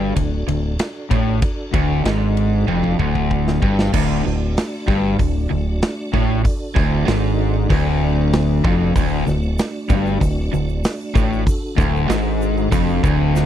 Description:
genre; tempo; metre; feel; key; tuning
classic rock; 96 BPM; 4/4; straight; D major; A4 = 440 Hz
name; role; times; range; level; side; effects
tonewheel organ; sustained chords; 0.0-13.5 s; A3 to F5; -29 LUFS; right 2 dB; overdrive, chorus vibrato, slow rotary speaker
overdriven electric guitar; riff; 0.0-13.5 s; D2 to A2; -22 LUFS; right 8 dB; none
overdriven semi-hollow guitar; riff; 0.0-13.5 s; D2 to A2; -21 LUFS; left 9 dB; none
growling fingered electric bass; bass; 0.0-13.5 s; D1 to A1; -22 LUFS; equal; overdrive
big rock drum kit; drums; 0.2-13.5 s; crash cymbal, hi-hat, kick drum, ride cymbal, snare drum; -21 LUFS; equal; none
egg shaker; percussion; 9.0-13.5 s; none; -42 LUFS; right 18 dB; none
room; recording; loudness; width
little or no reverb; dry, close 1970s-style studio recording; -16 LUFS; side -10 dB against mid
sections
0.0-3.9 A section; 3.9-13.5 A section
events
drum fill 2.7-3.9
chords
0.0 D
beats
0.17 0.80 | 1.43 2.05 2.68 3.31 | 3.94 4.57 5.20 5.83 | 6.46 7.08 7.71 8.34 | 8.96 9.59 10.22 10.85 | 11.47 12.10 12.72 13.35

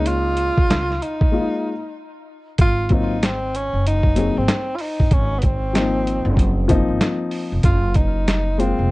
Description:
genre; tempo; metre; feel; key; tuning
hip hop, jazz-hop; 95 BPM; 4/4; swing 63% on 16ths; unclear; A4 = 440 Hz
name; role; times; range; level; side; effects
breathy tenor saxophone; melody; 0.0-8.9 s; Cb4 to F4; -24 LUFS; equal; tape echo
dark upright piano; accompaniment; 0.0-8.9 s; F3 to Ab4; -22 LUFS; left 3 dB; none
upright bass; bass; 0.0-8.9 s; F1 to Db2; -22 LUFS; equal; none
boom bap sampler-style drum kit; drums; 0.1-8.8 s; hi-hat, kick drum, snare drum; -18 LUFS; equal; none
room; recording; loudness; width
light reverb; cassette tape; -17 LUFS; side -20 dB against mid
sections
0.0-2.6 A section; 2.6-8.9 B section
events
break 1.3-2.6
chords
0.0 Db69; 1.3 Absus2; 2.6 Ab9; 5.1 Ab13; 7.6 Gbmaj9#11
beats
| 0.06 0.69 1.32 1.95 | 2.59 3.22 3.85 4.48 | 5.11 5.74 6.38 7.01 | 7.64 8.27 8.90

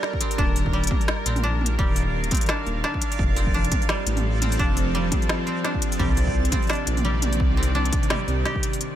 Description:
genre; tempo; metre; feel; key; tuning
half-time drum and bass; 171 BPM; 4/4; swing 58% on 16ths, half-time; unclear; A4 = 436 Hz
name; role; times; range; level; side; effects
bowed-like drone; sustained chords; 0.0-9.0 s; C3 to F5; -29 LUFS; equal; built-in reverb, sidechain pumping
koto; arpeggios; 0.0-9.0 s; G3 to G4; -29 LUFS; equal; dub echo
organic electronic drum kit; drums; 0.0-8.9 s; hi-hat, snare drum, toms; -28 LUFS; equal; overdrive
backwards swelling texture; texture; 0.0-9.0 s; D5 to F5; -34 LUFS; right 3 dB; built-in reverb
electronic kick drum; drums; 0.1-8.6 s; none; -24 LUFS; equal; none
dark detuned saw bass; bass; 0.4-8.4 s; Eb1 to C2; -24 LUFS; equal; tube saturation
room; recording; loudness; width
little or no reverb; none; -20 LUFS; side -11 dB against mid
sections
0.0-8.8 A section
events
drop 0.0-8.8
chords
0.4 Ebsus2; 3.2 F; 6.0 Cmadd9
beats
0.03 | 0.38 0.73 1.08 1.44 | 1.79 2.14 2.49 2.84 | 3.19 3.54 3.89 4.24 | 4.59 4.94 5.29 5.65 | 6.00 6.35 6.70 7.05 | 7.40 7.75 8.10 8.45 | 8.80

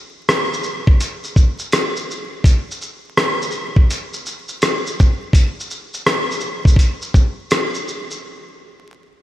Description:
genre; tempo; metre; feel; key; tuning
hip hop; 83 BPM; 4/4; swing 65% on 16ths; none; none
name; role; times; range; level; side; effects
dusty soul sampler-style drum kit; drums; 0.3-8.2 s; hi-hat, kick drum, rim click, shaker; -15 LUFS; equal; none
room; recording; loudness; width
light reverb; vinyl crackle; -15 LUFS; side -14 dB against mid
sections
0.0-8.2 A section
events
none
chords
none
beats
0.27 0.99 1.72 | 2.44 3.16 3.89 4.61 | 5.33 6.06 6.78 7.50

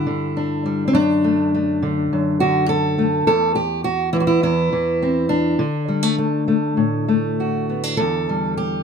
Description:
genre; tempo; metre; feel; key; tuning
folk, solo fingerstyle acoustic guitar; 102 BPM; 4/4; rubato; unclear; A4 = 444 Hz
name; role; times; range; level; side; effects
fingerpicked steel-string acoustic guitar; solo; 0.0-8.8 s; E2 to A4; -17 LUFS; equal; none
room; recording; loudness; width
light reverb; close, detailed microphones; -17 LUFS; side -6 dB against mid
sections
0.0-8.8 A section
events
none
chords
0.0 G5; 0.9 D/F#; 3.3 Em11; 5.6 D; 8.0 Em7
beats
0.36 | 0.95 1.53 2.12 2.69 | 3.27 3.84 4.43 5.01 | 5.59 6.18 6.78 7.38 | 7.98 8.58

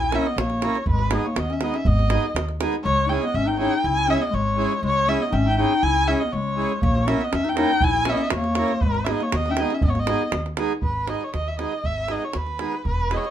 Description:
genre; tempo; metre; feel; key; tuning
balkan folk, Balkan wedding band; 121 BPM; 2/4; straight; G# harmonic minor; A4 = 436 Hz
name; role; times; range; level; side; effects
dark erhu; melody; 0.0-13.3 s; B4 to G#5; -24 LUFS; right 1 dB; none
dark clarinet; second line; 0.0-10.3 s; G#3 to E4; -26 LUFS; left 5 dB; none
upright bass; bass; 0.0-13.2 s; E1 to E2; -26 LUFS; equal; none
davul; percussion; 0.0-2.8, 6.8-13.3 s; none; -27 LUFS; right 2 dB; none
accordion; accompaniment; 0.1-13.3 s; G#3 to A#4; -27 LUFS; right 5 dB; none
room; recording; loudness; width
moderate small room reverb, RT60 0.6 s; minimal, uncompressed stereo recording; -20 LUFS; side -10 dB against mid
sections
0.0-2.9 A section; 2.9-10.8 A section; 10.8-13.3 B section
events
none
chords
0.0 A#dim; 0.9 G#m; 2.9 C#m; 6.8 A#dim; 8.8 G#m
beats
0.37 | 0.87 1.36 | 1.86 2.36 | 2.85 3.35 | 3.85 4.34 | 4.84 5.33 | 5.83 6.33 | 6.83 7.32 | 7.82 8.32 | 8.82 9.32 | 9.82 10.32 | 10.82 11.33 | 11.83 12.34 | 12.85

